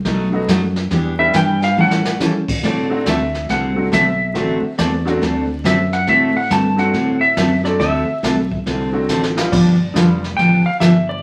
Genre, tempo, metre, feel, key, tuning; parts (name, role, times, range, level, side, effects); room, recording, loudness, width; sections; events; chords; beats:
country, western swing; 139 BPM; 4/4; swing 65% on 8ths; D mixolydian; A4 = 441 Hz
mellow fretless electric bass; bass; 0.0-11.2 s; F1 to C#3; -24 LUFS; equal
picked steel-string acoustic guitar; accompaniment; 0.1-10.9 s; B2 to A4; -20 LUFS; equal
jazz brush drum kit; drums; 0.1-11.2 s; brushed snare drum, crash cymbal, hi-hat, kick drum, snare drum; -27 LUFS; equal
bright upright piano; accompaniment; 0.3-10.2 s; F3 to A4; -24 LUFS; equal
clean lap steel guitar; melody; 1.2-11.2 s; D5 to A5; -21 LUFS; equal
wet studio reverb, RT60 0.6 s; vinyl crackle; -16 LUFS; mono
0.0-2.6 A section; 2.6-11.2 B section
electric slide guitar solo 0.0-2.6; drum fill 1.8-2.2, 9.1-9.5
0.1 B7; 0.9 Em7; 1.8 A7; 2.6 D7; 9.5 G7
0.06 0.48 | 0.91 1.34 1.77 2.20 | 2.63 3.06 3.49 3.92 | 4.35 4.79 5.21 5.64 | 6.08 6.51 6.94 7.37 | 7.80 8.23 8.66 9.09 | 9.52 9.95 10.38 10.81